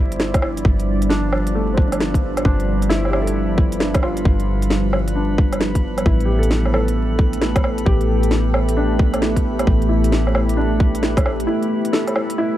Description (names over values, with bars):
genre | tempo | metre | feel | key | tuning
future garage | 133 BPM | 4/4 | swing 64% on 16ths | A minor | A4 = 438 Hz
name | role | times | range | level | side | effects
felt-muted upright piano | accompaniment | 0.0-12.6 s | G3 to A4 | -26 LUFS | left 1 dB | sidechain pumping, analog delay
deep dark ambient pad | sustained chords | 0.0-12.6 s | F3 to D5 | -23 LUFS | right 1 dB | chorus, built-in reverb, sidechain pumping
soft 808-style bass | bass | 0.0-11.5 s | G1 to A1 | -21 LUFS | equal | sidechain pumping
drifting glass-harmonics texture | texture | 0.1-12.6 s | B3 to B5 | -29 LUFS | left 1 dB | chorus, built-in reverb
organic electronic drum kit | drums | 0.1-12.4 s | hi-hat, snare drum, woodblock | -22 LUFS | right 1 dB | overdrive
electronic kick drum | drums | 0.3-11.2 s | none | -16 LUFS | equal | overdrive
room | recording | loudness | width
light reverb, digital ambience | vinyl crackle | -16 LUFS | side -13 dB against mid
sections
0.0-12.6 A section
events
none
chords
0.0 G7sus4; 6.1 A5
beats
0.20 | 0.65 1.10 1.55 2.00 | 2.46 2.91 3.36 3.81 | 4.26 4.71 5.16 5.61 | 6.07 6.52 6.97 7.42 | 7.87 8.32 8.77 9.22 | 9.67 10.12 10.58 11.03 | 11.48 11.93 12.38